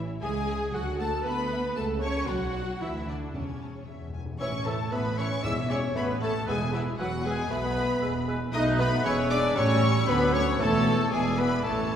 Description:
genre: quick classical-period movement for symphony orchestra.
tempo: 116 BPM.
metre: 2/4.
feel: straight.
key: A major.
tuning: A4 = 441 Hz.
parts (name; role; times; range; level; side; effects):
rich studio violin section; melody; 0.0-12.0 s; C#5 to E6; -35 LUFS; left 2 dB; none.
warm studio double bass section; bass; 0.0-12.0 s; E1 to E2; -32 LUFS; right 3 dB; none.
rich studio violin section; second line; 0.2-12.0 s; E4 to C#6; -36 LUFS; left 2 dB; none.
dark studio viola section; accompaniment; 0.2-12.0 s; E3 to C#5; -33 LUFS; right 1 dB; none.
warm studio cello section; bass; 0.2-12.0 s; D2 to C#4; -32 LUFS; right 1 dB; none.
timpani; percussion; 3.3-7.2, 9.6-11.9 s; E2 to A2; -38 LUFS; left 1 dB; none.
flute section; second line; 4.4-12.0 s; D6 to F#6; -39 LUFS; left 2 dB; none.
mellow clarinet; second line; 4.4-12.0 s; E4 to E5; -34 LUFS; equal; none.
warm oboe; second line; 4.4-12.0 s; A4 to E5; -38 LUFS; equal; none.
mellow bassoon; accompaniment; 4.4-12.0 s; E3 to B3; -35 LUFS; left 1 dB; none.
mellow French horn section; sustained chords; 4.4-12.0 s; E3 to E4; -33 LUFS; left 4 dB; none.
mellow trumpet; stabs; 4.4-12.0 s; E4 to E5; -34 LUFS; equal; none.
room: wet scoring stage reverb, RT60 1.8 s.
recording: heard from further back in the room.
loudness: -24 LUFS.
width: side -9 dB against mid.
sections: 0.0-4.4 A section; 4.4-12.0 B section.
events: timpani fill 3.9-4.4, 11.7.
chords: 0.2 C#5; 0.7 D; 1.3 N.C.; 1.8 A/C#; 2.3 B5; 2.8 Dadd9; 3.3 A/E; 3.9 N.C.; 4.4 A5; 5.4 E7; 6.0 A; 6.5 E5; 7.5 B7(no3); 8.0 E; 8.5 B7; 9.1 E; 9.6 A7; 10.1 D; 10.6 A/E; 11.1 E7.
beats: | 0.22 0.73 | 1.25 1.77 | 2.29 2.81 | 3.34 3.87 | 4.40 4.92 | 5.45 5.96 | 6.48 7.00 | 7.51 8.03 | 8.54 9.05 | 9.57 10.08 | 10.60 11.13 | 11.66.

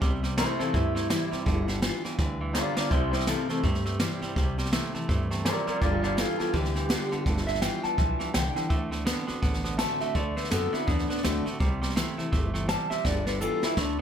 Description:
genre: rockabilly.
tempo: 166 BPM.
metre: 4/4.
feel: swing 60% on 8ths.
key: G mixolydian.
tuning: A4 = 439 Hz.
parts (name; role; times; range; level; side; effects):
picked steel-string acoustic guitar; accompaniment; 0.0-14.0 s; G2 to F#4; -34 LUFS; left 4 dB; none.
clean electric guitar; riff; 0.0-14.0 s; G2 to B3; -34 LUFS; right 5 dB; none.
upright bass; bass; 0.0-14.0 s; G1 to G2; -32 LUFS; equal; none.
jazz brush drum kit; drums; 0.0-13.9 s; hi-hat, kick drum, snare drum; -29 LUFS; equal; none.
electric guitar through a small old amp; melody; 0.4-14.0 s; C4 to A5; -30 LUFS; left 1 dB; tape echo.
room: light reverb.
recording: none.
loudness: -25 LUFS.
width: side -8 dB against mid.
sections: 0.0-14.0 A section.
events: drum fill 2.2-2.9, 13.0-14.0.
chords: 0.0 C7; 1.5 G7; 2.9 C7; 5.8 G7; 8.7 D7; 11.6 C7; 13.0 G7.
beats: | 0.01 0.38 0.74 1.10 | 1.47 1.83 2.19 2.55 | 2.92 3.28 3.64 4.00 | 4.37 4.73 5.09 5.45 | 5.81 6.17 6.54 6.90 | 7.26 7.62 7.98 8.35 | 8.71 9.07 9.43 9.79 | 10.15 10.51 10.88 11.24 | 11.60 11.96 12.32 12.69 | 13.05 13.41 13.77.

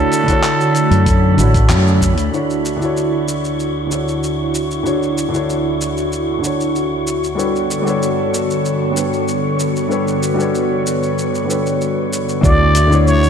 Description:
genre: sunset chillout.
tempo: 95 BPM.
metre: 4/4.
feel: straight.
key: D major.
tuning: A4 = 442 Hz.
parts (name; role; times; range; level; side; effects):
trumpet with plunger mute; melody; 0.0-2.0, 12.4-13.3 s; A4 to D5; -19 LUFS; right 1 dB; tape echo.
dark grand piano; accompaniment; 0.0-13.3 s; D3 to D5; -19 LUFS; equal; auto-pan, dub echo.
airy breathy pad; sustained chords; 0.0-13.3 s; D2 to E5; -20 LUFS; equal; chorus, vintage 12-bit sampler grit.
fretless electric bass; bass; 0.0-2.3, 12.4-13.3 s; A1 to F#2; -13 LUFS; equal; ensemble chorus.
wind-like tuned noise texture; texture; 0.0-12.4 s; B5 to C#6; -29 LUFS; left 2 dB; built-in reverb.
dusty soul sampler-style drum kit; drums; 0.1-13.3 s; handclaps, hi-hat, shaker; -25 LUFS; equal; none.
electronic kick drum; drums; 0.3-2.1, 12.4-12.6 s; none; -16 LUFS; equal; none.
room: moderate echo chamber reverb, RT60 1.7 s.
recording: echo-heavy mix.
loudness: -14 LUFS.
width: side -7 dB against mid.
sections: 0.0-2.3 A section; 2.3-12.4 B section.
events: band accent 1.7-2.0.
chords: 0.0 Dmaj7; 2.3 Dmaj9; 7.4 Gmaj9#11; 12.4 Dmaj9.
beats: 0.43 1.06 1.69 | 2.32 2.95 3.59 4.22 | 4.85 5.48 6.11 6.74 | 7.38 8.01 8.64 9.27 | 9.90 10.53 11.16 11.80 | 12.43 13.06.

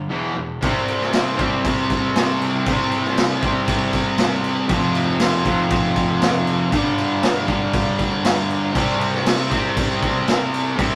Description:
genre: garage rock duo or trio.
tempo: 118 BPM.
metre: 4/4.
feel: straight.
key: unclear.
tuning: A4 = 440 Hz.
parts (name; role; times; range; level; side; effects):
fuzz guitar; riff; 0.0-11.0 s; E2 to C4; -22 LUFS; equal; distortion.
raw garage drum kit; drums; 0.6-10.9 s; crash cymbal, kick drum, snare drum; -23 LUFS; equal; none.
room: light reverb.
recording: rough rehearsal-room recording.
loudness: -20 LUFS.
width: mono.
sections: 0.6-11.0 A section.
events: break 0.0-0.6.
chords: 0.1 E5; 0.6 C5; 4.7 F5; 6.7 G5; 8.8 C5.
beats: 0.12 | 0.63 1.14 1.65 2.15 | 2.66 3.17 3.68 4.19 | 4.69 5.20 5.71 6.21 | 6.72 7.23 7.74 8.24 | 8.75 9.26 9.77 10.28 | 10.78.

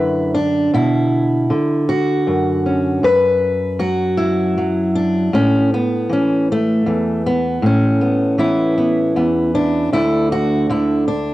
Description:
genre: folk, solo fingerstyle acoustic guitar.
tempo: 52 BPM (dotted quarters).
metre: 6/8.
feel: straight.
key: D major.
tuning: A4 = 441 Hz.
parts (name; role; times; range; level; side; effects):
fingerpicked steel-string acoustic guitar; solo; 0.0-11.3 s; D2 to B4; -14 LUFS; equal; cassette tape.
room: light reverb, small room ambience.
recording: home recording on cassette.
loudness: -14 LUFS.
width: side -16 dB against mid.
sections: 0.0-9.9 A section; 9.9-11.3 B section.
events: none.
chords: 0.0 Dadd9/F#; 0.7 Bmadd9; 3.0 N.C.; 5.3 Aadd9; 9.9 Dadd9.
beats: | 0.73 1.88 | 3.03 4.18 | 5.33 6.48 | 7.63 8.78 | 9.93 11.08.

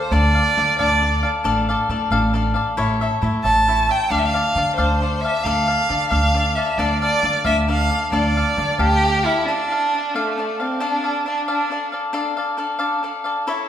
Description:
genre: mexican folk, mariachi.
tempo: 90 BPM (dotted quarters).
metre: 6/8.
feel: straight.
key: D minor.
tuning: A4 = 440 Hz.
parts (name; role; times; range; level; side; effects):
rich violin; melody; 0.0-1.3, 3.4-11.9 s; A3 to A5; -20 LUFS; right 2 dB; none.
cavaquinho; accompaniment; 0.0-13.7 s; D4 to F5; -22 LUFS; left 3 dB; none.
upright bass; bass; 0.1-9.2 s; A1 to D3; -21 LUFS; right 1 dB; none.
room: wet recital hall reverb, RT60 1.4 s.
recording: recorded in a church or concert hall.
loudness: -17 LUFS.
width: side -10 dB against mid.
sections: 0.0-9.5 A section; 9.5-13.7 A section.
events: none.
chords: 0.0 Dm; 1.4 Dm/A; 2.8 A; 4.1 Dm.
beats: | 0.11 0.79 | 1.45 2.11 | 2.78 3.45 | 4.12 4.79 | 5.46 6.12 | 6.79 7.45 | 8.12 8.79 | 9.47 10.14 | 10.81 11.47 | 12.13 12.79 | 13.46.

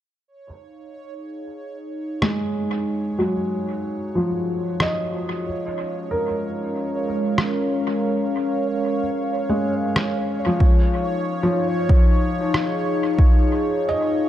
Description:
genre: ambient dub.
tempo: 93 BPM.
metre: 4/4.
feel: straight.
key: unclear.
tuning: A4 = 440 Hz.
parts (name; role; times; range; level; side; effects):
bubbling stepped-filter texture; texture; 0.4-14.3 s; Db5; -31 LUFS; right 5 dB; chorus, built-in reverb.
warm analog pad; sustained chords; 0.5-14.3 s; Ab3 to F5; -25 LUFS; left 1 dB; chorus.
felt-muted upright piano; arpeggios; 2.2-14.3 s; F3 to Eb5; -24 LUFS; equal; low-pass filter, dub echo.
electronic rim click; drums; 2.2-12.7 s; none; -26 LUFS; equal; dub echo.
electronic kick drum; drums; 10.6-13.3 s; none; -15 LUFS; equal; none.
room: light reverb, digital ambience.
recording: dark, warm production.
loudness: -19 LUFS.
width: side -12 dB against mid.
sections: 0.3-14.3 A section.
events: filter sweep on analog synth pad 0.3-14.3; filter sweep on felt piano 0.3-14.3.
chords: 0.3 Ebm11; 5.4 Eb9sus4.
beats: | 0.28 0.93 1.57 2.22 | 2.86 3.51 4.15 4.80 | 5.44 6.09 6.73 7.38 | 8.02 8.67 9.31 9.96 | 10.61 11.25 11.89 12.54 | 13.19 13.83.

